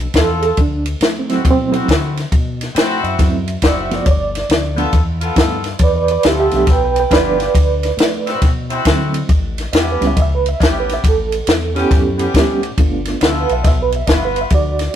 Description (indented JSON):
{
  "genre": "electric blues shuffle",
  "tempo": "138 BPM",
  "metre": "4/4",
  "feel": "swing 65% on 8ths",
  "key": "D mixolydian",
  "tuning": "A4 = 440 Hz",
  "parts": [
    { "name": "mellow reed electric piano", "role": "accompaniment", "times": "0.0-15.0 s", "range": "F3 to G5", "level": "-18 LUFS", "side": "right 4 dB", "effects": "fast tremolo" },
    { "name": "fingered electric bass", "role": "bass", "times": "0.0-14.9 s", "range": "F#1 to D3", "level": "-22 LUFS", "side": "left 1 dB", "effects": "none" },
    { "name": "clear horn section", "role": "stabs", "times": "0.1-14.5 s", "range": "B3 to B4", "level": "-23 LUFS", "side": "left 3 dB", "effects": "none" },
    { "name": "compact cocktail drum kit", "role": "drums", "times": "0.1-14.9 s", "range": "kick drum, ride cymbal, snare drum", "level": "-15 LUFS", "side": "left 1 dB", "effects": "none" }
  ],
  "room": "light reverb",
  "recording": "rough rehearsal-room recording",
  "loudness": "-13 LUFS",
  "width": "side -10 dB against mid",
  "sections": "0.0-15.0 A section",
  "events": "none",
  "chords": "0.0 G9 (rootless); 0.6 D9; 4.1 G9; 7.5 D9; 9.3 A9; 12.8 G9"
}